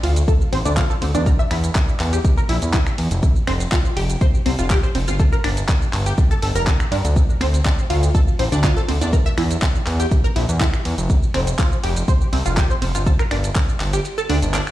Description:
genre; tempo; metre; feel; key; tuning
progressive house; 122 BPM; 4/4; straight; unclear; A4 = 440 Hz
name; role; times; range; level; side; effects
tight sequenced synth; arpeggios; 0.0-14.6 s; C4 to E6; -25 LUFS; equal; chorus, phaser, sidechain pumping, dub echo
fat analog bass; bass; 0.0-14.6 s; F1 to G2; -20 LUFS; equal; sidechain pumping
deep house drum kit; drums; 0.0-14.7 s; finger snaps, handclaps, hi-hat, ride cymbal, shaker; -27 LUFS; equal; none
electronic kick drum; drums; 0.3-13.7 s; none; -17 LUFS; equal; none
room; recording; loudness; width
little or no reverb; played on a big sound system in a bare room, large studio reverb; -16 LUFS; side -14 dB against mid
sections
0.0-14.7 A section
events
kick drops out 14.0-14.7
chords
0.0 Dm7; 1.3 E(b5, no3); 3.2 Fsus2; 5.2 G5; 7.2 Dm7; 9.1 E(b5, no3); 11.1 Fsus2; 13.1 G5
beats
0.28 0.77 | 1.26 1.75 2.25 2.74 | 3.23 3.72 4.21 4.71 | 5.20 5.69 6.18 6.67 | 7.16 7.66 8.15 8.64 | 9.13 9.62 10.12 10.61 | 11.10 11.59 12.08 12.57 | 13.06 13.56 14.05 14.54

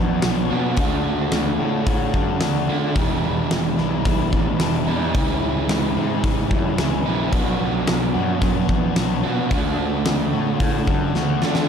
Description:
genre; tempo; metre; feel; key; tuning
rock, shoegaze and dream pop; 110 BPM; 4/4; straight; unclear; A4 = 441 Hz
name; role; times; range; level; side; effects
overdriven electric guitar; riff; 0.0-11.7 s; E2 to F#4; -25 LUFS; left 12 dB; wide subtle chorus
overdriven semi-hollow guitar; riff; 0.0-11.7 s; E2 to F#4; -23 LUFS; right 11 dB; reverse reverb
fuzz picked electric bass; bass; 0.0-11.7 s; E1 to D3; -25 LUFS; left 1 dB; overdrive
huge arena drum kit; drums; 0.2-11.7 s; hi-hat, kick drum, snare drum; -23 LUFS; left 1 dB; none
room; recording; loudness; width
studio reverb; dark, warm production; -18 LUFS; side -7 dB against mid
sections
0.0-11.7 A section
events
drum fill 11.2-11.7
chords
0.0 Bm; 0.8 D; 3.0 E7(no3); 5.2 C#m; 7.3 Bm; 9.5 D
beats
0.24 | 0.79 1.33 1.88 2.42 | 2.97 3.52 4.06 4.61 | 5.15 5.70 6.25 6.79 | 7.34 7.88 8.43 8.97 | 9.52 10.06 10.61 11.15

